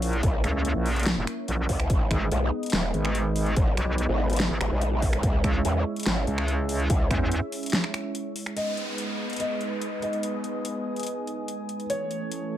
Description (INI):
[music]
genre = heavy wobble dubstep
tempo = 144 BPM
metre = 4/4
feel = half-time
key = G# minor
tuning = A4 = 441 Hz
[part]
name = lush unison pad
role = sustained chords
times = 0.0-12.6 s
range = E3 to E5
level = -32 LUFS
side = right 1 dB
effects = chorus, vintage 12-bit sampler grit, sidechain pumping
[part]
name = metallic wobble bass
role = bass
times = 0.0-7.4 s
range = E1 to E2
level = -25 LUFS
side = equal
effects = chorus, overdrive
[part]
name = dubstep drum kit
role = drums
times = 0.0-12.4 s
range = finger snaps, hi-hat, snare drum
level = -30 LUFS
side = equal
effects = none
[part]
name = growl bass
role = bass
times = 0.2-7.1 s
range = D#1 to E2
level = -26 LUFS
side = equal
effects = chorus, overdrive
[part]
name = electronic kick drum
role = drums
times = 0.2-7.2 s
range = none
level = -25 LUFS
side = equal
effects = none
[part]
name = felt-muted upright piano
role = melody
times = 8.6-12.6 s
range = C#5 to D#5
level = -33 LUFS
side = left 1 dB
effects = digital delay
[part]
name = downlifter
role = sound effects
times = 8.6-11.9 s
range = none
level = -37 LUFS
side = equal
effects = none
[part]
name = warbly tape-like pad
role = texture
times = 8.6-12.6 s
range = A3 to D#6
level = -36 LUFS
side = right 2 dB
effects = chorus, built-in reverb, phaser, sidechain pumping
[sound]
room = little or no reverb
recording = none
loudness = -24 LUFS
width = side -12 dB against mid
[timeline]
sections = 0.0-8.6 A section; 8.6-12.6 B section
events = drop 0.0-8.6; break 7.7-8.6; filter sweep on analog synth pad 8.6-12.6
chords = 0.0 A#dim; 1.9 G#m; 5.2 C#m; 8.6 G#m; 11.9 A